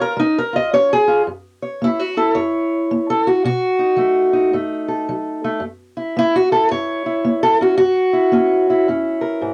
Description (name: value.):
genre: acoustic country blues, solo or duo.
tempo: 111 BPM.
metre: 4/4.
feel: swing 63% on 8ths.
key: F# mixolydian.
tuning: A4 = 441 Hz.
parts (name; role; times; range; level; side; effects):
fingerpicked steel-string acoustic guitar; solo; 0.0-9.5 s; F#2 to D#5; -17 LUFS; equal; none.
room: light reverb.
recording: home recording on cassette.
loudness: -17 LUFS.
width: mono.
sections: 0.0-1.3 A section; 1.3-9.5 A section.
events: steel-string acoustic guitar solo 0.0-1.3, 1.3-9.5.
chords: 0.0 C#; 1.3 F#7; 3.4 B7; 5.6 F#7.